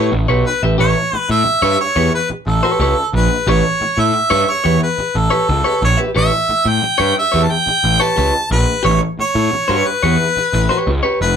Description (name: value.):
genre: funk.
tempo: 90 BPM.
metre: 4/4.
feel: straight.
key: unclear.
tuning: A4 = 438 Hz.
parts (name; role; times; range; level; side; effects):
clear harmonica; melody; 0.0-11.4 s; A4 to A5; -16 LUFS; right 1 dB; none.
clean electric guitar; accompaniment; 0.0-11.2 s; G4 to E5; -18 LUFS; left 1 dB; none.
fuzz picked electric bass; bass; 0.0-11.3 s; F1 to A2; -17 LUFS; equal; overdrive.
room: moderate small room reverb, RT60 0.5 s.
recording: band playing live in one room.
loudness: -13 LUFS.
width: side -8 dB against mid.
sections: 0.0-11.4 A section.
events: none.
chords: 0.0 A9.